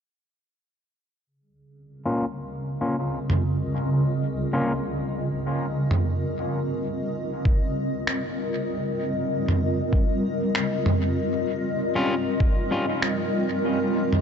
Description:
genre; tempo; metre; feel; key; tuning
ambient dub; 97 BPM; 4/4; swing 56% on 16ths; unclear; A4 = 443 Hz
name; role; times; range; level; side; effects
granular cloud pad; sustained chords; 2.3-14.2 s; Db3 to Eb5; -25 LUFS; equal; built-in reverb
electric guitar at the edge of break-up; stabs; 2.1-4.7, 12.0-12.9 s; G3 to F4; -30 LUFS; left 1 dB; low-pass filter, dub echo
lo-fi sampler-style drum kit; drums; 3.3-14.2 s; finger snaps, toms; -26 LUFS; right 1 dB; dub echo
electronic kick drum; drums; 7.5-12.5 s; none; -21 LUFS; equal; none
room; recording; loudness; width
light reverb; nothing above 7.8 kHz; -23 LUFS; side -7 dB against mid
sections
1.3-6.2 A section; 6.2-14.2 B section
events
none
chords
1.3 Db6; 11.2 Ebadd9

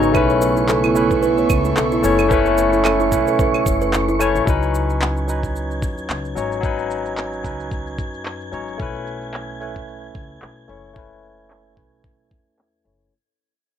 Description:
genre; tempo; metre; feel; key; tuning
sunset chillout; 111 BPM; 4/4; swing 56% on 16ths; unclear; A4 = 440 Hz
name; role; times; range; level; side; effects
barky tine electric piano; accompaniment; 0.0-13.1 s; F#3 to C#5; -21 LUFS; moving between left 7 dB and right 7 dB; auto-pan, low-pass filter, digital delay
airy breathy pad; sustained chords; 0.0-4.5 s; C#3 to E4; -24 LUFS; right 2 dB; chorus
kalimba; arpeggios; 0.0-4.4 s; E4 to C#5; -21 LUFS; right 3 dB; digital delay
upright bass; bass; 0.0-13.1 s; F#1 to F#2; -26 LUFS; equal; none
electronic shaker, claves and handclaps; drums; 0.0-13.1 s; none; -25 LUFS; right 1 dB; low-pass filter on perc, small room ambience, low-pass filter on snare
wind-like tuned noise texture; texture; 0.0-13.1 s; C#6 to G#6; -30 LUFS; right 1 dB; built-in reverb
electronic kick drum; drums; 0.1-12.4 s; none; -23 LUFS; equal; small room ambience
room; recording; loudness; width
light reverb; rough home demo mix; -17 LUFS; side -9 dB against mid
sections
0.0-4.5 A section; 4.5-13.1 B section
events
fade-out 4.5-13.1; filter sweep on drum 4.5-13.1; filter sweep on upright bass 4.5-13.1; filter sweep on tine electric piano 4.5-13.1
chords
0.1 B9sus4; 4.5 C#9sus4; 8.8 B9sus4

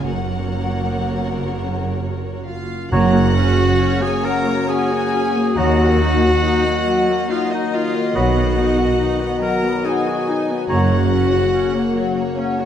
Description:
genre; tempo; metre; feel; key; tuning
classical, slow romantic movement for symphony orchestra; 59-73 BPM; 3/4; rubato; F# major; A4 = 438 Hz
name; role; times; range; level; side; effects
warm studio violin section; melody; 0.0-12.7 s; C#5 to F#5; -31 LUFS; left 3 dB; none
clear studio violin section; second line; 0.0-12.3 s; A#4 to A#5; -28 LUFS; right 1 dB; none
rich studio viola section; accompaniment; 0.0-12.7 s; F#3 to F#4; -24 LUFS; right 1 dB; none
concert harp; arpeggios; 0.0-12.7 s; F#2 to B5; -26 LUFS; left 5 dB; none
rich studio cello section; bass; 0.0-11.4 s; D#2 to B2; -26 LUFS; right 3 dB; none
rich symphonic double bass section; bass; 0.0-11.4 s; F#1 to D#2; -23 LUFS; right 3 dB; none
bright clarinet; second line; 2.5-12.3 s; D#4 to A#4; -22 LUFS; left 1 dB; none
concert flute; second line; 2.9-11.1 s; A#5 to B5; -31 LUFS; left 3 dB; none
warm oboe; second line; 2.9-11.0 s; C#5 to D#5; -29 LUFS; right 2 dB; none
mellow bassoon; accompaniment; 2.9-11.0 s; F#3; -27 LUFS; right 3 dB; none
dark French horn section; sustained chords; 2.9-12.7 s; A#3 to F#4; -23 LUFS; left 6 dB; none
mellow trombone section; sustained chords; 2.9-12.7 s; C#3 to F#3; -29 LUFS; right 1 dB; none
mellow tuba; bass; 2.9-11.4 s; F#1 to D#2; -26 LUFS; right 3 dB; none
timpani; percussion; 2.9-4.2 s; F#2; -22 LUFS; right 2 dB; none
room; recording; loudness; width
moderate scoring stage reverb, RT60 1.7 s; dark, warm production; -16 LUFS; side -9 dB against mid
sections
0.0-2.9 A section; 2.9-12.7 B section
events
none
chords
0.1 F#; 5.6 D#m; 8.2 B; 10.7 F#

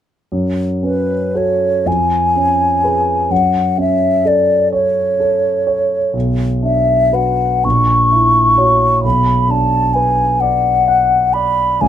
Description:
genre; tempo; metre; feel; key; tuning
classical, romantic duo for flute and grand piano; 38-44 BPM (dotted quarters); 6/8; rubato; F# minor; A4 = 440 Hz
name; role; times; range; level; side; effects
warm concert grand piano; accompaniment; 0.3-11.9 s; A#1 to F#5; -16 LUFS; right 1 dB; none
mellow hollow concert flute; melody; 0.8-11.9 s; B4 to C#6; -13 LUFS; left 1 dB; none
room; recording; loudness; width
light reverb; minimal, uncompressed stereo recording; -12 LUFS; side -10 dB against mid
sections
0.3-11.9 A section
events
none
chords
0.3 F#m; 1.9 C#7/E#; 3.3 F#m; 6.1 Bm; 7.6 F#7/A#; 9.0 Bm

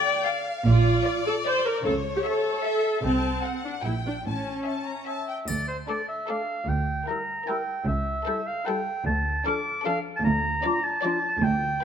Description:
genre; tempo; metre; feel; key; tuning
cinematic, playful, whimsical film cue; 152 BPM; 3/4; straight; D minor; A4 = 436 Hz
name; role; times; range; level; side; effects
rich studio violin section; melody; 0.0-11.8 s; A4 to G5; -35 LUFS; left 4 dB; none
rich chamber violin section; second line; 0.0-11.3 s; D4 to Bb5; -34 LUFS; left 5 dB; none
rich studio viola section; accompaniment; 0.0-11.3 s; F3 to D5; -27 LUFS; equal; none
clear studio double bass section; bass; 0.7-11.8 s; A1 to D2; -27 LUFS; right 3 dB; none
rich symphonic cello section; bass; 0.7-11.7 s; C#2 to C#3; -29 LUFS; right 2 dB; none
clear oboe; second line; 5.1-11.8 s; C5 to D6; -28 LUFS; right 1 dB; none
triangle; percussion; 5.5-6.2 s; none; -40 LUFS; left 2 dB; none
mellow hollow large flute ensemble; second line; 5.9-11.1 s; D6 to G6; -35 LUFS; left 4 dB; none
warm clarinet; second line; 5.9-11.2 s; F4 to Bb4; -34 LUFS; left 3 dB; none
room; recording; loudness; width
light reverb; close, detailed microphones; -24 LUFS; side -8 dB against mid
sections
0.0-5.5 A section; 5.5-11.8 A section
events
none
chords
0.0 Dm; 0.7 Bb; 1.8 A/C#; 3.0 D7/C (rootless); 3.8 Gm/Bb; 4.2 A; 5.5 Dm; 6.7 Em7b5/D; 7.9 A7/C#; 9.1 Dm

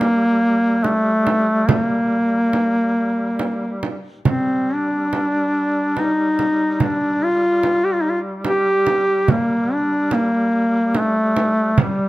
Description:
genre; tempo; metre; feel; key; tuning
caucasian folk, Caucasian lament; 72 BPM; 3/4; rubato; G minor; A4 = 437 Hz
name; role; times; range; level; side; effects
warm duduk; melody; 0.0-12.1 s; G3 to G4; -17 LUFS; equal; none
warm duduk; drone; 0.0-12.1 s; G3; -29 LUFS; equal; none
frame drum; percussion; 0.0-12.0 s; none; -21 LUFS; right 3 dB; none
room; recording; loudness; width
light reverb; close, detailed microphones; -16 LUFS; side -17 dB against mid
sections
0.0-12.1 A section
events
none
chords
none

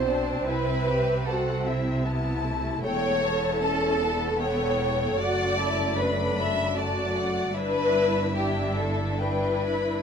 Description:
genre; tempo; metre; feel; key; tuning
classical, slow romantic movement for string orchestra; 76 BPM; 3/4; rubato; D major; A4 = 438 Hz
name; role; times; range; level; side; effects
rich studio violin section; melody; 0.0-10.0 s; E5 to B5; -34 LUFS; left 5 dB; none
rich studio violin section; second line; 0.0-10.0 s; G4 to E5; -26 LUFS; left 1 dB; none
rich studio viola section; accompaniment; 0.0-10.0 s; A3 to A4; -29 LUFS; equal; none
warm studio cello section; bass; 0.0-10.0 s; E2 to C3; -32 LUFS; right 1 dB; none
warm studio double bass section; bass; 0.0-10.0 s; E1 to C2; -32 LUFS; right 2 dB; none
room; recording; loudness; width
light reverb; none; -23 LUFS; side -7 dB against mid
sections
0.0-10.0 A section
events
none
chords
0.5 Am/C; 2.8 A7/E; 5.2 D/F#; 7.5 Em7/G

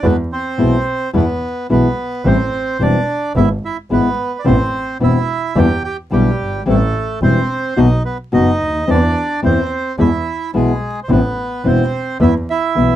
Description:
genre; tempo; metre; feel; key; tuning
tango; 108 BPM; 4/4; rubato; A minor; A4 = 440 Hz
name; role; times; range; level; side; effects
bandoneon; melody; 0.0-13.0 s; G3 to G5; -20 LUFS; right 3 dB; none
nylon-string guitar; accompaniment; 0.0-12.9 s; B2 to F#4; -15 LUFS; left 2 dB; none
clear double bass; bass; 0.0-13.0 s; E1 to E2; -17 LUFS; right 1 dB; none
room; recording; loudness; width
light reverb; dry, close 1970s-style studio recording, vinyl crackle; -14 LUFS; side -12 dB against mid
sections
0.0-13.0 A section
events
none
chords
0.0 E; 2.2 Am7; 3.4 E/G#; 4.5 Amadd9; 5.6 Em7; 6.7 Am7; 7.8 B7; 8.9 Am/E; 10.0 E; 11.1 Amadd9; 12.2 Esus4

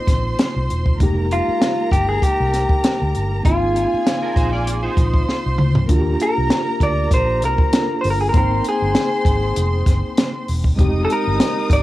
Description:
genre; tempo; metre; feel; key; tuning
lush 1970s-style soul; 98 BPM; 4/4; swing 54% on 16ths; unclear; A4 = 437 Hz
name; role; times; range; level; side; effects
electric guitar through a small old amp; melody; 0.0-11.8 s; F4 to Eb5; -21 LUFS; equal; cassette tape, analog delay
warm studio violin section; second line; 0.0-11.8 s; Eb4 to Eb6; -28 LUFS; equal; cassette tape
mellow tine electric piano; accompaniment; 0.0-11.8 s; Ab3 to G5; -25 LUFS; equal; medium stereo tremolo, cassette tape
vintage muted fingered electric bass; bass; 0.1-11.8 s; E1 to Eb2; -21 LUFS; equal; tube saturation
compact cocktail drum kit; drums; 0.1-11.8 s; hi-hat, kick drum, snare drum, toms; -18 LUFS; equal; none
electric guitar at the edge of break-up; riff; 4.2-5.7 s; D4 to D5; -28 LUFS; right 3 dB; ensemble chorus, cassette tape
room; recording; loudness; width
light reverb; home recording on cassette; -15 LUFS; side -16 dB against mid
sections
0.0-5.9 A section; 5.9-11.8 B section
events
drum fill 5.3-5.9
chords
0.0 Ab6 (rootless); 1.0 Fm11; 3.5 Ab6; 5.9 Ebmaj9 (rootless); 8.3 Abmaj7; 10.8 Fm9

